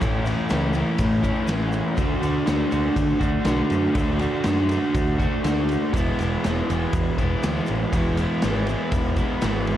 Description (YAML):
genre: garage rock duo or trio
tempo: 121 BPM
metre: 4/4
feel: straight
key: E mixolydian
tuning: A4 = 441 Hz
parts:
  - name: crunchy overdriven guitar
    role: riff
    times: 0.0-9.8 s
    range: A2 to F#4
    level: -22 LUFS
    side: equal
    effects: none
  - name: growling picked electric bass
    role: bass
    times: 0.0-9.7 s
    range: E1 to D3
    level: -26 LUFS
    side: equal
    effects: overdrive
  - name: raw garage drum kit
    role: drums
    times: 0.0-9.8 s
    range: kick drum, ride cymbal, snare drum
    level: -26 LUFS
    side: equal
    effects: none
  - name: tube shaker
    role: percussion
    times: 0.0-9.5 s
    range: none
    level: -49 LUFS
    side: left 3 dB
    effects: none
room: light reverb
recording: cassette tape, faint mains hum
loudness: -20 LUFS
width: side -12 dB against mid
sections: 0.0-9.8 A section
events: none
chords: 0.0 A; 2.0 D; 5.9 E